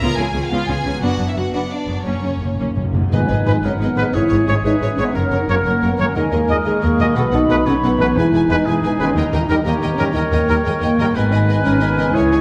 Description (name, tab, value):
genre	cinematic, heroic adventure film score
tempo	119 BPM (dotted quarters)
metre	12/8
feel	straight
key	G# minor from 3.1 s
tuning	A4 = 441 Hz
part	warm studio violin section	melody	0.0-12.4 s	C#5 to A#5	-33 LUFS	equal	none
part	rich symphonic violin section	second line	0.0-12.4 s	C#4 to D#5	-33 LUFS	equal	none
part	rich symphonic viola section	accompaniment	0.0-12.4 s	F#3 to B4	-31 LUFS	equal	none
part	dark French horn section	sustained chords	0.0-12.4 s	G#3 to E#4	-22 LUFS	equal	none
part	concert harp	arpeggios	0.0-12.4 s	F#2 to D#5	-31 LUFS	equal	none
part	rich symphonic cello section	bass	0.0-12.4 s	C#2 to C#3	-26 LUFS	equal	none
part	rich symphonic double bass section	bass	0.0-12.4 s	E1 to D#2	-26 LUFS	equal	none
part	timpani	percussion	2.1-9.6 s	F#2 to D#3	-26 LUFS	equal	none
part	large flute ensemble	second line	3.1-12.4 s	E5 to C#6	-31 LUFS	equal	none
part	warm oboe	second line	3.1-12.4 s	G#4 to D#5	-29 LUFS	equal	none
part	bright trombone section	sustained chords	3.5-12.4 s	F#2 to A#3	-30 LUFS	equal	none
part	warm trumpet	stabs	3.5-12.4 s	A#4 to D#5	-28 LUFS	equal	none
part	clear clarinet	second line	4.1-12.4 s	D#4 to C#5	-29 LUFS	equal	none
room	wet scoring stage reverb, RT60 1.7 s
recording	none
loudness	-17 LUFS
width	mono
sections	0.0-3.1 A section; 3.1-12.4 B section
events	timpani fill 2.1-3.1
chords	0.0 C#7; 1.0 Bm/F#; 2.1 F#; 3.1 G#m; 4.1 C#m/G#; 5.1 F#; 6.2 D#sus4; 7.2 B7; 8.2 E; 9.2 D#; 11.1 G#m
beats	0.01 0.52 | 1.02 1.53 2.06 2.59 | 3.12 3.63 4.14 4.65 | 5.15 5.65 6.16 6.66 | 7.16 7.66 8.16 8.66 | 9.16 9.65 10.15 10.65 | 11.15 11.65 12.15